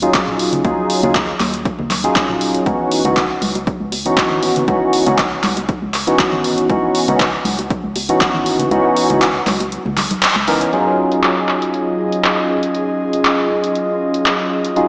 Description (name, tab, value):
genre	deep house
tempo	119 BPM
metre	4/4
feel	swing 53% on 16ths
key	Eb minor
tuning	A4 = 440 Hz
part	barky tine electric piano	stabs	0.0-14.9 s	Fb3 to Bb4	-19 LUFS	equal	analog chorus, sidechain pumping, analog delay
part	organ-like FM bass	bass	0.0-10.7 s	Eb1 to Eb2	-28 LUFS	equal	sidechain pumping
part	punchy analog drum machine	drums	0.0-14.9 s	handclaps, hi-hat	-21 LUFS	equal	overdrive, low-pass filter on hats, low-pass filter on snare
part	electronic kick drum	drums	0.1-8.3 s	none	-24 LUFS	equal	overdrive
part	congas and bongos	percussion	0.5-10.2 s	none	-28 LUFS	equal	none
part	airy breathy pad	sustained chords	11.2-14.9 s	Gb3 to Eb5	-21 LUFS	equal	chorus, sidechain pumping
room	wet lush hall reverb, RT60 1.8 s, digital ambience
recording	dreamy mix soaked in reverb, small speaker sound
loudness	-16 LUFS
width	mono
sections	0.0-10.7 A section; 10.7-14.9 B section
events	kick drops out 8.7-10.7; band accent 10.2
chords	0.0 Ebm11; 2.7 Dbm11; 10.7 Ebm11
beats	0.14 | 0.65 1.15 1.65 2.16 | 2.66 3.17 3.67 4.17 | 4.68 5.18 5.69 6.19 | 6.70 7.20 7.70 8.21 | 8.71 9.22 9.72 10.22 | 10.73 11.23 11.74 12.24 | 12.75 13.25 13.76 14.26 | 14.76